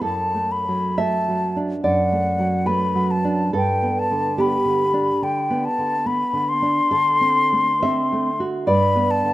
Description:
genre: romantic duo for flute and classical guitar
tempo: 60-74 BPM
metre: 4/4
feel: rubato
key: G major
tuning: A4 = 439 Hz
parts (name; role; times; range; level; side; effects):
- concert flute; melody; 0.0-9.3 s; F#5 to C6; -20 LUFS; left 2 dB; none
- nylon-string guitar; accompaniment; 0.0-9.3 s; F#2 to E5; -21 LUFS; right 2 dB; none
room: light reverb, small room reverb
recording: rough home demo mix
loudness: -18 LUFS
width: side -16 dB against mid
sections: 0.0-9.3 A section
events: none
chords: 0.0 D/F#; 3.5 G; 6.9 D7; 8.7 G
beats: | 0.03 0.99 1.84 2.66 | 3.54 4.39 5.22 6.06 | 6.91 7.84 8.68

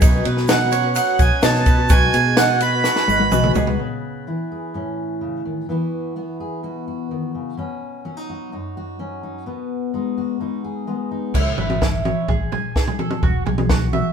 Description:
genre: indie folk with a building arrangement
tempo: 127 BPM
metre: 4/4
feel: straight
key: C# minor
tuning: A4 = 440 Hz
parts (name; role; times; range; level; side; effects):
- picked twelve-string acoustic guitar; accompaniment; 0.0-3.8 s; B2 to F#4; -24 LUFS; left 6 dB; none
- mandolin; arpeggios; 0.0-3.8, 11.3-14.1 s; D#4 to G#5; -26 LUFS; right 6 dB; none
- fingered electric bass; bass; 0.0-3.8, 11.3-14.0 s; E1 to B2; -22 LUFS; equal; none
- compact cocktail drum kit; drums; 0.0-3.8, 11.3-14.0 s; crash cymbal, kick drum, ride cymbal, snare drum, toms; -18 LUFS; equal; none
- egg shaker; percussion; 0.0-3.7 s; none; -34 LUFS; right 6 dB; none
- accordion; melody; 0.5-3.5 s; F#5 to B5; -20 LUFS; right 6 dB; analog delay
- glockenspiel with soft plastic mallets; second line; 0.5-3.5 s; F#6 to B6; -27 LUFS; left 5 dB; none
- fingerpicked steel-string acoustic guitar; accompaniment; 3.8-11.3 s; F#2 to G#4; -25 LUFS; left 3 dB; none
room: moderate studio reverb, RT60 0.9 s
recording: band playing live in one room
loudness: -17 LUFS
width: side -7 dB against mid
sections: 0.0-3.8 A section; 3.8-11.4 B section; 11.4-14.1 C section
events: drum fill 2.8-3.8, 11.4-14.1; build-up 11.4-14.1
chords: 0.0 Badd9; 1.9 G#m7/B; 3.8 C#m7; 4.7 A; 5.7 Eadd9; 7.6 Badd9; 9.5 G#m7/B; 11.4 C#m7; 12.3 N.C.; 13.2 Eadd9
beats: | 0.02 0.49 0.96 1.43 | 1.90 2.37 2.85 3.32 | 3.79 4.26 4.74 5.21 | 5.68 6.16 6.63 7.10 | 7.58 8.05 8.52 8.99 | 9.47 9.94 10.41 10.88 | 11.35 11.82 12.29 12.76 | 13.23 13.71

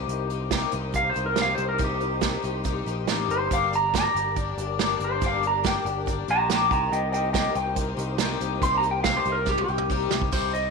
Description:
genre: folk rock and heartland rock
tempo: 141 BPM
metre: 4/4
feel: straight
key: unclear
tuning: A4 = 440 Hz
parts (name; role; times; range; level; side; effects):
- picked twelve-string acoustic guitar; accompaniment; 0.0-10.7 s; G2 to G4; -29 LUFS; left 16 dB; none
- muted studio string section; sustained chords; 0.0-10.3 s; D4 to D5; -35 LUFS; left 2 dB; none
- picked electric bass; bass; 0.0-10.7 s; G1 to C2; -31 LUFS; equal; none
- soft brush drum kit; drums; 0.1-10.6 s; crash cymbal, hi-hat, kick drum, snare drum, toms; -28 LUFS; right 5 dB; none
- clean lap steel guitar; melody; 1.0-10.7 s; G4 to C6; -25 LUFS; right 2 dB; none
room: light reverb, small room reverb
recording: 1960s-style stereo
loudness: -22 LUFS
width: side -4 dB against mid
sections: 0.0-10.3 A section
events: electric slide guitar solo 0.0-10.3; drum fill 9.5-10.3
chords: 0.0 Cm7; 3.5 Gm; 6.7 Cm7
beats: | 0.09 0.52 0.95 1.37 | 1.80 2.23 2.66 3.08 | 3.51 3.94 4.36 4.79 | 5.22 5.64 6.07 6.50 | 6.92 7.35 7.78 8.20 | 8.63 9.05 9.48 9.91 | 10.33

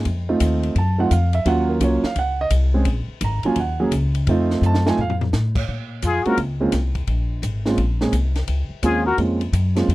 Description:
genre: jazz, small-group swing and bop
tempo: 171 BPM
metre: 4/4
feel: swing 65% on 8ths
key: Bb minor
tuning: A4 = 440 Hz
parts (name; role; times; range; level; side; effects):
- dark grand piano; accompaniment; 0.0-9.9 s; Gb3 to Bb5; -21 LUFS; right 3 dB; none
- upright bass; bass; 0.0-9.9 s; Ab1 to Bb2; -20 LUFS; left 1 dB; none
- compact cocktail drum kit; drums; 0.1-9.9 s; crash cymbal, hi-hat, kick drum, ride cymbal, snare drum, toms; -29 LUFS; left 1 dB; none
- dark trumpet; second line; 6.0-6.4, 8.8-9.2 s; F4 to Gb4; -23 LUFS; equal; none
- trumpet with plunger mute; melody; 6.1-6.4, 8.8-9.2 s; Ab4 to Bb4; -21 LUFS; left 5 dB; none
room: little or no reverb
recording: dry, close 1970s-style studio recording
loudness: -18 LUFS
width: side -18 dB against mid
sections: 0.0-5.7 A section; 5.7-9.9 B section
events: drum fill 4.6-5.3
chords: 0.1 F7; 1.5 Ebm7; 2.9 Bbm7; 3.6 Ebm7; 4.3 F7; 5.7 Bbm7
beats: | 0.06 0.41 0.76 1.11 | 1.46 1.81 2.16 2.51 | 2.86 3.21 3.56 3.92 | 4.27 4.62 4.97 5.32 | 5.67 6.02 6.37 6.72 | 7.07 7.42 7.78 8.13 | 8.48 8.83 9.18 9.53 | 9.88

